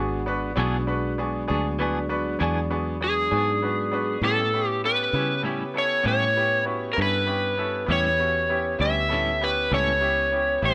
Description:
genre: blues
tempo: 66 BPM (dotted quarters)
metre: 12/8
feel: straight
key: unclear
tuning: A4 = 440 Hz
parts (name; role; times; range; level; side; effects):
- bright concert grand piano; accompaniment; 0.0-10.7 s; B3 to B4; -32 LUFS; equal; none
- mellow tonewheel organ; sustained chords; 0.0-10.7 s; F#3 to B4; -35 LUFS; equal; slow rotary speaker
- fingered electric bass; bass; 0.0-10.7 s; G#1 to C#3; -31 LUFS; equal; none
- clean electric guitar; accompaniment; 0.6-10.7 s; A2 to G#4; -33 LUFS; equal; tremolo
- overdriven slide guitar; melody; 3.0-10.7 s; G#4 to E5; -25 LUFS; equal; none
room: moderate spring reverb, RT60 1.6 s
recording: none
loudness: -24 LUFS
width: mono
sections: 0.0-10.7 A section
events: none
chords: 0.0 E7; 4.2 A7

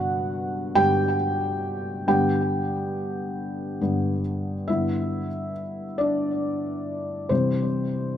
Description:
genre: pop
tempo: 46 BPM (dotted quarters)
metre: 6/8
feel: straight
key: G major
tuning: A4 = 438 Hz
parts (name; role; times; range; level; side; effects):
- felt-muted upright piano; solo; 0.0-8.2 s; G2 to G5; -23 LUFS; equal; digital delay
room: moderate plate reverb, RT60 3.2 s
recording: rough home demo mix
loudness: -23 LUFS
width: side -10 dB against mid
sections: 0.0-4.7 A section; 4.7-8.2 B section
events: felt piano solo 0.0-4.7, 4.7-8.2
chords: 0.0 G; 7.3 C

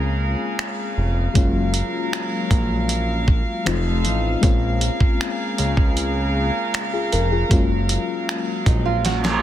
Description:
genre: contemporary R&B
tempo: 78 BPM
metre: 4/4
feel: straight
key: Bb minor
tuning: A4 = 436 Hz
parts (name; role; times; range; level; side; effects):
- FM electric piano with tremolo; accompaniment; 0.0-9.4 s; F3 to Bb4; -25 LUFS; left 5 dB; none
- warm chamber string section; sustained chords; 0.0-9.4 s; Db3 to F5; -27 LUFS; right 2 dB; none
- fat analog bass; bass; 0.0-9.4 s; F1 to Db2; -22 LUFS; equal; none
- dusty soul sampler-style drum kit; drums; 0.6-9.4 s; finger snaps, hi-hat, kick drum, snare drum; -20 LUFS; equal; soft clipping on snare
- flamenco guitar; arpeggios; 8.7-9.4 s; Eb4 to Ab4; -25 LUFS; right 12 dB; none
- reverse cymbal; sound effects; 9.2-9.4 s; none; -22 LUFS; right 6 dB; none
room: digital ambience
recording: dense, heavily limited modern master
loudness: -18 LUFS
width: side -12 dB against mid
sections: 0.0-9.4 A section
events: drum fill 9.0-9.4; reverse cymbal 9.2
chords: 0.0 Bbm7; 1.4 Gbmaj7; 3.7 F7; 4.4 Bbm7; 7.5 Gbmaj7

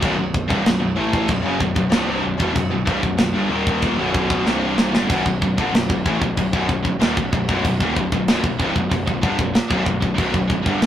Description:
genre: heavy metal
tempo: 94 BPM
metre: 4/4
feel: straight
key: B phrygian dominant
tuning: A4 = 440 Hz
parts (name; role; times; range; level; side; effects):
- high-gain distorted guitar; riff; 0.0-10.9 s; B1 to A3; -23 LUFS; left 4 dB; distortion
- scooped high-gain guitar; riff; 0.0-10.9 s; B1 to A3; -27 LUFS; right 5 dB; distortion
- scooped high-gain guitar; riff; 0.0-10.9 s; B1 to A3; -26 LUFS; right 1 dB; distortion
- fuzz picked electric bass; bass; 0.0-10.9 s; B0 to A1; -27 LUFS; equal; overdrive
- tight metal drum kit; drums; 0.0-10.9 s; china cymbal, crash cymbal, kick drum, snare drum; -21 LUFS; equal; none
room: light reverb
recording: rough rehearsal-room recording, tube saturation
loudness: -17 LUFS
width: side -10 dB against mid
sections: 0.0-5.1 A section; 5.1-10.9 B section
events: drum fill 4.5-5.1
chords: 0.0 B

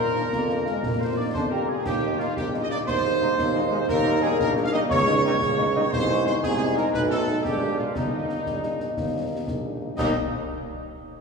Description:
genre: military-style march for wind band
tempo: 118 BPM (dotted quarters)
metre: 6/8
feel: straight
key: Eb major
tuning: A4 = 439 Hz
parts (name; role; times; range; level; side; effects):
- mellow trumpet section; melody; 0.0-10.1 s; Eb4 to F5; -30 LUFS; right 2 dB; none
- mellow hollow wooden piccolo; second line; 0.0-10.2 s; Eb5 to F6; -32 LUFS; equal; none
- warm woodwind section; second line; 0.0-10.1 s; Eb4 to F5; -30 LUFS; left 1 dB; none
- mellow French horn section; accompaniment; 0.0-10.1 s; F3 to Eb4; -32 LUFS; left 3 dB; none
- clear tuba; bass; 0.0-10.1 s; Bb1 to Bb2; -27 LUFS; right 2 dB; none
- warm trombone section; sustained chords; 0.2-10.1 s; G3 to G4; -31 LUFS; equal; none
- concert snare drum, concert bass drum and clash cymbals; drums; 0.2-10.2 s; none; -32 LUFS; equal; none
room: wet church reverb, RT60 3.5 s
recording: recorded in a church or concert hall, small room ambience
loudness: -22 LUFS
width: side -4 dB against mid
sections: 0.0-10.0 A section; 10.0-11.0 B section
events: none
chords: 0.0 Bb; 1.9 Eb; 2.9 Ab/Eb; 3.9 Eb; 4.9 Eb7/Db; 5.9 Ab/C; 6.9 B7; 7.4 Bb7; 8.0 Eb

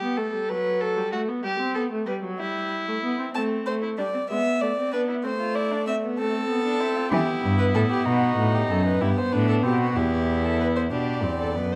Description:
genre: classical, baroque-style fugue for string quartet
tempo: 63 BPM (dotted quarters)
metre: 6/8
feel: straight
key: A minor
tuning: A4 = 438 Hz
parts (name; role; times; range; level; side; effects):
- rich violin; second line; 0.0-11.8 s; B3 to C5; -31 LUFS; equal; none
- warm viola; accompaniment; 0.0-11.8 s; F#3 to E4; -30 LUFS; equal; none
- warm violin; melody; 3.3-11.8 s; F#4 to A5; -30 LUFS; equal; none
- rich cello; bass; 7.1-11.8 s; E2 to E3; -26 LUFS; equal; none
room: moderate recital hall reverb, RT60 1.6 s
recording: dark, warm production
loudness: -24 LUFS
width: mono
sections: 0.0-3.4 A section; 3.4-10.9 B section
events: none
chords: 0.5 B5/F#; 1.4 Am13; 2.4 Em/G; 3.4 Am; 4.3 E7(no3); 5.2 Am; 7.1 Em; 8.1 B7; 9.0 Em/G (rootless); 10.0 Em; 10.9 G

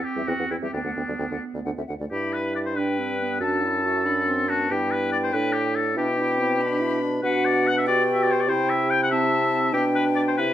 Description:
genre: quick classical-period movement for wind quintet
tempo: 86-97 BPM (dotted quarters)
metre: 6/8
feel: rubato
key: G major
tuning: A4 = 440 Hz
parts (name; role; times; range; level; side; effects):
- clear oboe; second line; 0.0-10.5 s; D4 to G5; -25 LUFS; left 2 dB; none
- dark clarinet; accompaniment; 0.0-10.5 s; B3 to F#4; -30 LUFS; right 6 dB; none
- silver concert flute; melody; 0.2-10.5 s; D5 to C6; -29 LUFS; left 5 dB; none
- mellow French horn; accompaniment; 0.2-10.5 s; G3 to G4; -30 LUFS; equal; none
- mellow bassoon; bass; 0.2-10.5 s; D2 to C3; -27 LUFS; right 2 dB; none
room: moderate large studio reverb, RT60 1.2 s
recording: none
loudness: -21 LUFS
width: side -11 dB against mid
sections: 0.0-2.1 A section; 2.1-10.5 B section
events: none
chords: 0.0 C/E; 0.7 G/D (rootless); 1.4 D5; 2.1 G; 3.4 D7/F#; 4.7 G; 6.0 G/B; 7.2 Bm; 7.9 G/B; 8.5 C; 9.1 Am/C; 9.7 G/B

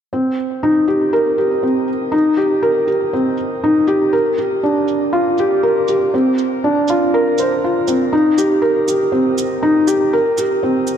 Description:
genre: piano and strings electronica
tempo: 120 BPM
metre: 4/4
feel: straight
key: unclear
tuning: A4 = 437 Hz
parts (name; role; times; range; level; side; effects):
- felt-muted upright piano; riff; 0.1-11.0 s; C4 to C5; -14 LUFS; equal; ping-pong delay, shimmer reverb
- shaker; drums; 0.4-11.0 s; none; -30 LUFS; right 6 dB; low-pass filter on perc, low-pass filter on room
room: moderate lush hall reverb, RT60 1.8 s, studio ambience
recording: dark, warm production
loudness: -13 LUFS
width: side -8 dB against mid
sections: 0.1-11.0 A section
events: none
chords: none

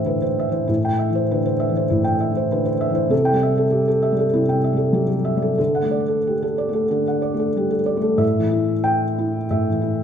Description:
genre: neoclassical minimalist piano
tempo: 90-100 BPM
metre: 4/4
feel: rubato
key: A dorian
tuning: A4 = 440 Hz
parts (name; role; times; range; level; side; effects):
- felt-muted upright piano; solo; 0.0-10.0 s; A2 to G5; -18 LUFS; equal; none
room: wet recital hall reverb, RT60 1.5 s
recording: recorded in a church or concert hall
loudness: -18 LUFS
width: side -8 dB against mid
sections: 0.0-8.2 A section; 8.2-10.0 B section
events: none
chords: 0.0 Am7; 3.1 C6; 5.6 D; 8.2 A5

